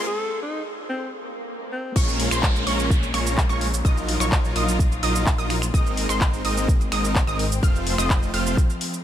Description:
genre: EDM, festival progressive house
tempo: 127 BPM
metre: 4/4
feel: straight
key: Bb minor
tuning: A4 = 439 Hz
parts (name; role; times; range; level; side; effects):
- warm alto saxophone; melody; 0.0-2.0 s; C4 to A4; -31 LUFS; left 1 dB; digital delay
- dark studio string section; sustained chords; 0.0-9.0 s; F3 to F4; -32 LUFS; left 3 dB; sidechain pumping
- wide unison pluck; arpeggios; 0.0-8.6 s; C6 to F6; -31 LUFS; moving between left 2 dB and right 4 dB; auto-pan, sidechain pumping, digital delay
- big supersaw lead; riff; 0.0-8.6 s; Gb3 to F5; -28 LUFS; right 1 dB; sidechain pumping, digital delay
- riser, swell and downlifter; sound effects; 0.0-5.7 s; none; -33 LUFS; right 1 dB; none
- wide detuned saw bass; bass; 2.0-8.6 s; F1 to Bb1; -27 LUFS; equal; chorus, sidechain pumping
- electronic kick drum; drums; 2.0-8.7 s; none; -20 LUFS; equal; high-pass filter on kick, studio reverb
- house drum kit; drums; 2.0-9.0 s; crash cymbal, finger snaps, handclaps, hi-hat, shaker; -28 LUFS; equal; high-pass filter on snare, studio reverb, high-pass filter on hats, high-pass filter on perc, high-pass filter on cymbals
room: little or no reverb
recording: high-pass filter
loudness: -20 LUFS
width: side -11 dB against mid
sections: 0.0-2.0 A section; 2.0-9.0 B section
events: build-up 0.0-2.0; filter sweep on supersaw synth 0.0-2.0; filter sweep 0.0-2.0; break 0.1-2.0; swell 1.2-2.0; drop 2.0-9.0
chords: 0.1 N.C.; 2.0 Bbm7; 3.8 Ebmadd9/Bb; 5.7 Abadd9; 7.6 F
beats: | 0.07 0.54 1.01 1.49 | 1.96 2.43 2.90 3.38 | 3.85 4.32 4.79 5.27 | 5.74 6.21 6.68 7.16 | 7.63 8.10 8.57

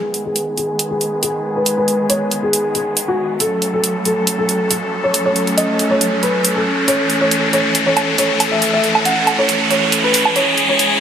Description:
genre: heavy wobble dubstep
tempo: 138 BPM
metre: 4/4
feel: half-time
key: G# phrygian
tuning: A4 = 440 Hz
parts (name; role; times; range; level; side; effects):
- felt-muted upright piano; melody; 0.0-11.0 s; F#4 to F#5; -19 LUFS; left 1 dB; low-pass filter, dub echo
- muted studio string section; sustained chords; 0.0-11.0 s; D#3 to A4; -20 LUFS; right 1 dB; low-pass filter
- riser; sound effects; 1.5-11.0 s; none; -19 LUFS; equal; none
- electronic hi-hat and woodblock; drums; 0.1-10.9 s; none; -17 LUFS; right 2 dB; overdrive
room: light reverb, digital ambience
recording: high-pass filter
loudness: -14 LUFS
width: side -8 dB against mid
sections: 0.0-11.0 A section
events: build-up 0.0-11.0; filter sweep on string section 0.0-11.0; filter sweep on felt piano 0.0-11.0; filter sweep 0.0-11.0; riser 1.5-11.0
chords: 0.0 G#m; 3.4 F#m; 6.9 A; 10.4 C#m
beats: 0.36 0.79 1.23 | 1.66 2.10 2.53 2.97 | 3.40 3.84 4.27 4.71 | 5.14 5.58 6.01 6.45 | 6.88 7.32 7.75 8.18 | 8.62 9.05 9.49 9.92 | 10.36 10.79

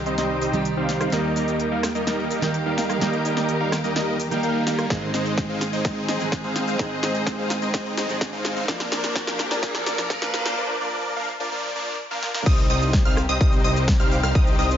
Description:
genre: EDM, festival progressive house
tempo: 127 BPM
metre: 4/4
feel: straight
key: C minor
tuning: A4 = 441 Hz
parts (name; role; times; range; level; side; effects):
- fingerpicked steel-string acoustic guitar; accompaniment; 0.0-10.6 s; Ab2 to Bb4; -28 LUFS; right 3 dB; sidechain pumping, dub echo
- warm symphonic string section; sustained chords; 0.0-14.8 s; C2 to Bb4; -31 LUFS; left 2 dB; sidechain pumping
- supersaw chords; riff; 0.1-14.8 s; F3 to G5; -25 LUFS; equal; sidechain pumping, low-pass filter, dub echo
- big-room dance drum kit; drums; 0.1-14.8 s; crash cymbal, hi-hat, rim click, shaker, snare drum; -29 LUFS; equal; overdrive, high-pass filter on snare, high-pass filter on hats, high-pass filter on perc, high-pass filter on cymbals
- electronic kick drum; drums; 4.9-14.4 s; none; -21 LUFS; equal; overdrive
- riser; sound effects; 7.9-10.6 s; none; -34 LUFS; equal; none
- wide unison pluck; arpeggios; 12.5-14.8 s; Eb6 to F6; -27 LUFS; equal; phaser, sidechain pumping, dub echo
- fat analog bass; bass; 12.5-14.8 s; C2; -24 LUFS; equal; tube saturation, sidechain pumping
room: moderate lush hall reverb, RT60 2.3 s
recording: high-pass filter, nothing above 7.5 kHz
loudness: -20 LUFS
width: side -10 dB against mid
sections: 0.0-12.5 A section; 12.5-14.8 B section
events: build-up 0.0-12.5; drum fill 0.0-10.6, 12.2; filter sweep on supersaw synth 0.0-12.5; filter sweep 0.0-12.5; riser 7.9-10.6; drop 12.5-14.8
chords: 0.0 Cm; 1.1 Eb; 4.9 Ab; 8.7 Bb; 12.5 Cm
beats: 0.18 0.65 | 1.12 1.60 2.07 2.54 | 3.01 3.49 3.96 4.43 | 4.90 5.38 5.85 6.32 | 6.79 7.27 7.74 8.21 | 8.68 9.16 9.63 10.10 | 10.57 11.04 11.52 11.99 | 12.46 12.94 13.41 13.88 | 14.35

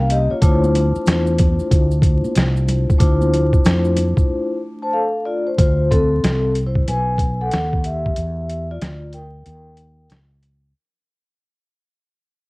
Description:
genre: hip hop, jazz-hop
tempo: 93 BPM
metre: 4/4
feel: swing 65% on 16ths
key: unclear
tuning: A4 = 440 Hz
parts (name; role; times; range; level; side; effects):
- vibraphone with soft mallets; accompaniment; 0.0-10.1 s; A3 to A5; -21 LUFS; left 1 dB; cassette tape
- fretless electric bass; bass; 0.0-10.7 s; B1 to F2; -19 LUFS; equal; none
- boom bap sampler-style drum kit; drums; 0.1-10.6 s; hi-hat, kick drum, snare drum; -17 LUFS; equal; none
- maracas and congas; percussion; 0.4-4.3 s; none; -31 LUFS; right 3 dB; none
room: studio ambience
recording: home recording on cassette, vinyl crackle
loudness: -15 LUFS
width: side -23 dB against mid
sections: 0.0-5.6 A section; 5.6-10.7 B section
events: break 4.3-5.6, 8.2-10.7; fade-out 5.6-10.7; vibraphone solo 5.6-10.7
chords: 0.4 Dm7; 6.9 B7; 8.2 Em7b5; 9.5 Eb7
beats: | 0.42 1.07 1.72 2.36 | 3.00 3.65 4.30 4.94 | 5.59 6.23 6.88 7.52 | 8.17 8.81 9.46 10.10

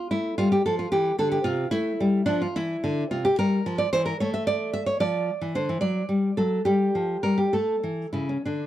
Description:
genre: classical, baroque-style dance for nylon-string guitar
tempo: 62-76 BPM (dotted quarters)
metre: 6/8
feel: rubato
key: A minor, D minor from 3.4 s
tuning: A4 = 440 Hz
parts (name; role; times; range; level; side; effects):
- nylon-string guitar; solo; 0.0-8.7 s; C3 to E5; -22 LUFS; equal; none
room: small room ambience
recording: dry, close 1970s-style studio recording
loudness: -22 LUFS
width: side -13 dB against mid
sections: 0.0-8.7 A section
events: none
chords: 0.1 A5; 3.4 Edim; 4.2 N.C.; 5.0 Dm/F; 5.8 D/F#; 6.7 Fsus24; 7.5 A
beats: | 0.10 0.92 | 1.72 2.54 | 3.38 4.20 | 5.01 5.82 | 6.67 7.54 | 8.45

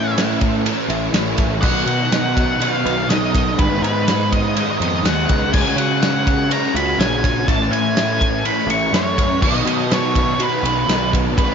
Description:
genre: rock, shoegaze and dream pop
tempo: 123 BPM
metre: 4/4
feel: straight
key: unclear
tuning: A4 = 441 Hz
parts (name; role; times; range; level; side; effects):
- octave-fuzz lead guitar; melody; 0.0-11.5 s; Cb5 to C#6; -22 LUFS; equal; distortion, analog delay
- crunchy overdriven guitar; riff; 0.0-11.5 s; Ab2 to Gb4; -21 LUFS; equal; ensemble chorus
- fuzz picked electric bass; bass; 0.0-11.5 s; Ab1 to Db3; -22 LUFS; equal; overdrive
- loose indie drum kit; drums; 0.2-11.5 s; crash cymbal, kick drum, ride cymbal, snare drum; -20 LUFS; equal; none
room: light reverb, small room ambience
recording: nothing above 7.5 kHz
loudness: -15 LUFS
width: side -6 dB against mid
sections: 0.0-11.5 A section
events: none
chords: 0.0 A; 1.6 Cb; 3.6 Abm7; 5.5 Dbsus4; 7.5 Amaj7; 9.4 Cbadd9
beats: 0.16 0.65 1.14 | 1.63 2.12 2.60 3.09 | 3.58 4.07 4.55 5.04 | 5.53 6.01 6.50 6.99 | 7.48 7.96 8.45 8.94 | 9.42 9.91 10.40 10.88 | 11.37

